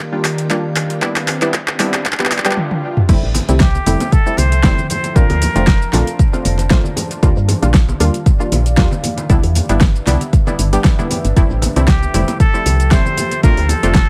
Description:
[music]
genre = deep house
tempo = 116 BPM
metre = 4/4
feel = swing 54% on 16ths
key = F major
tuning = A4 = 440 Hz
[part]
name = deep dark ambient pad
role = sustained chords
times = 0.0-14.1 s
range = Eb3 to A5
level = -30 LUFS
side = equal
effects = chorus, built-in reverb, sidechain pumping
[part]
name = airy breathy pad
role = texture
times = 0.0-2.6 s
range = Eb3 to F5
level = -30 LUFS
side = equal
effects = chorus, sidechain pumping
[part]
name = string machine, violins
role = texture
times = 0.0-2.6 s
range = G4 to G5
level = -40 LUFS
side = equal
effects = none
[part]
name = filtered dub chord stab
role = stabs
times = 0.1-14.0 s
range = G3 to G4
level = -24 LUFS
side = equal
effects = chorus, sidechain pumping, dub echo
[part]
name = deep house drum kit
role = drums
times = 0.2-14.1 s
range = crash cymbal, handclaps, hi-hat, shaker, snare drum, toms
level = -21 LUFS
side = equal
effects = none
[part]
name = electronic kick drum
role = drums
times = 0.5-14.1 s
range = none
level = -15 LUFS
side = equal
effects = high-pass filter on kick
[part]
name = swell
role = sound effects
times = 2.5-3.1 s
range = none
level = -32 LUFS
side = equal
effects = none
[part]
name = woody FM bass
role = bass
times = 3.1-14.1 s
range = F1 to G2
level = -18 LUFS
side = equal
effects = sidechain pumping
[part]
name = congas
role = percussion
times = 3.1-14.1 s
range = none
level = -26 LUFS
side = equal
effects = none
[part]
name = trumpet with straight mute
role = melody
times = 3.6-6.2, 11.9-14.1 s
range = G4 to C5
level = -24 LUFS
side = equal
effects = vintage 12-bit sampler grit, dub echo
[sound]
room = light reverb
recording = echo-heavy mix, vinyl crackle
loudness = -14 LUFS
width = mono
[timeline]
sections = 0.0-3.1 A section; 3.1-14.1 B section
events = build-up 0.0-3.1; drum fill 0.0-2.6, 2.6-3.1; swell 2.5-3.1; drop 3.1-14.1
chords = 0.0 Ebmaj9; 1.0 Cmaj9; 3.1 Fmaj9; 5.2 Bbmaj9; 7.2 Ebmaj9; 9.3 Cmaj9 (rootless); 11.4 Fmaj9; 13.4 Bbmaj9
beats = 0.50 | 1.02 1.54 2.06 2.57 | 3.09 3.61 4.12 4.64 | 5.16 5.67 6.19 6.71 | 7.23 7.74 8.26 8.78 | 9.30 9.81 10.33 10.85 | 11.37 11.88 12.40 12.92 | 13.43 13.95

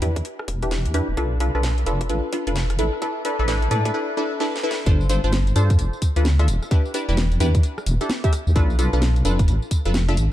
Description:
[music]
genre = UK garage, two-step garage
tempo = 130 BPM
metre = 4/4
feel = swing 62% on 16ths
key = unclear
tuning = A4 = 435 Hz
[part]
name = punchy chord stab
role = stabs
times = 0.0-10.2 s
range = D4 to E5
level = -25 LUFS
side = equal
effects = chorus, vintage 12-bit sampler grit, dub echo
[part]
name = deep soft wobble bass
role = bass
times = 0.0-10.3 s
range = E1 to A2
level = -20 LUFS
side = equal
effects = chorus, sidechain pumping
[part]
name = garage drum kit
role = drums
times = 0.0-10.3 s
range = hi-hat, rim click, snare drum, tambourine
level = -30 LUFS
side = equal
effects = high-pass filter on hats, high-pass filter on snare, high-pass filter on perc
[part]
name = electronic kick drum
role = drums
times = 0.2-9.8 s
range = none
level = -19 LUFS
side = equal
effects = high-pass filter on kick
[sound]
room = light reverb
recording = dark, warm production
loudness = -18 LUFS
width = side -13 dB against mid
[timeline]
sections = 0.0-4.9 A section; 4.9-10.3 B section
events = build-up 0.0-4.9; filter sweep on synth stab 0.0-4.9; break 3.9-4.9; drum fill 4.4-4.9; drop 4.9-10.3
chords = 0.0 Em7; 1.2 Bm7b5; 2.8 A5; 4.9 G9sus4; 6.5 Em7; 8.6 Bm7b5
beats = 0.25 0.71 | 1.17 1.63 2.10 2.56 | 3.02 3.48 3.94 4.40 | 4.87 5.33 5.79 6.25 | 6.71 7.17 7.63 8.10 | 8.56 9.02 9.48 9.94

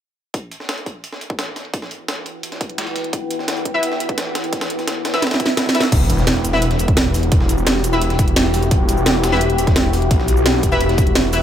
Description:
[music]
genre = dark technical drum and bass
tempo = 172 BPM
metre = 4/4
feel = straight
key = E minor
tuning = A4 = 438 Hz
[part]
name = deep dark ambient pad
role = sustained chords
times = 2.3-11.4 s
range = E4 to G5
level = -23 LUFS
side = left 2 dB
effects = chorus, built-in reverb, sidechain pumping
[part]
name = breakbeat sampler-style drum kit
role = drums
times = 0.3-11.4 s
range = hi-hat, snare drum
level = -26 LUFS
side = equal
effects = high-pass filter on hats, high-pass filter on snare, high-pass filter on room
[part]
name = drum and bass drum kit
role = drums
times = 0.3-11.4 s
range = crash cymbal, hi-hat, shaker, snare drum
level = -20 LUFS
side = right 2 dB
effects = overdrive, low-pass filter on hats, low-pass filter on snare, low-pass filter on cymbals, low-pass filter on perc
[part]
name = electronic kick drum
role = drums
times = 0.3-11.1 s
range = none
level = -19 LUFS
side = equal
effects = high-pass filter on kick
[part]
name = orchestra-hit-like synth stab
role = stabs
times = 3.7-11.4 s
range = E4 to E5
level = -23 LUFS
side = left 1 dB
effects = built-in reverb, digital delay
[part]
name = swell and impact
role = sound effects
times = 5.3-7.3 s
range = none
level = -25 LUFS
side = equal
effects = none
[part]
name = wide detuned saw bass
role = bass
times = 5.9-11.4 s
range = E1 to B1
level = -19 LUFS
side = equal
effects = chorus, overdrive, sidechain pumping
[sound]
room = light reverb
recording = none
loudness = -15 LUFS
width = side -10 dB against mid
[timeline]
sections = 0.3-5.9 A section; 5.9-11.4 B section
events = filter sweep on drum 0.3-5.9; filter sweep on ambient pad 0.3-5.9; drum fill 5.2-5.9; swell 5.3-5.9; drop 5.9-11.4; impact 5.9-7.3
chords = 0.3 Emadd9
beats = | 0.34 0.69 1.04 1.39 | 1.74 2.08 2.43 2.78 | 3.13 3.48 3.83 4.18 | 4.53 4.88 5.22 5.57 | 5.92 6.27 6.62 6.97 | 7.32 7.67 8.02 8.36 | 8.71 9.06 9.41 9.76 | 10.11 10.46 10.81 11.15

